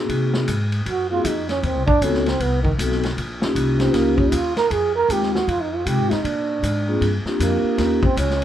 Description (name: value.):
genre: jazz, small-group swing and bop.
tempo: 156 BPM.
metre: 4/4.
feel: swing 63% on 8ths.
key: Eb mixolydian.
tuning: A4 = 441 Hz.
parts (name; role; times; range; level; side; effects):
vibraphone with soft mallets; accompaniment; 0.0-8.0 s; Ab3 to A4; -22 LUFS; left 2 dB; none.
upright bass; bass; 0.0-8.4 s; A1 to C3; -24 LUFS; left 1 dB; none.
vintage drum kit; drums; 0.1-8.4 s; hi-hat, kick drum, ride cymbal, snare drum; -26 LUFS; left 1 dB; none.
breathy trombone; second line; 0.9-8.4 s; Eb3 to Bb4; -22 LUFS; right 4 dB; none.
room: light reverb.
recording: minimal, uncompressed stereo recording.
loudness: -18 LUFS.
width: side -11 dB against mid.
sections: 0.0-8.4 A section.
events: trombone solo 0.0-8.4.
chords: 0.0 Ab7; 1.6 Adim7; 3.2 Eb7; 4.7 Fm7; 6.2 Bb7; 7.8 Eb7.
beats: | 0.09 0.47 0.86 1.25 | 1.63 2.02 2.40 2.79 | 3.17 3.56 3.94 4.33 | 4.71 5.09 5.48 5.86 | 6.25 6.63 7.02 7.40 | 7.78 8.17.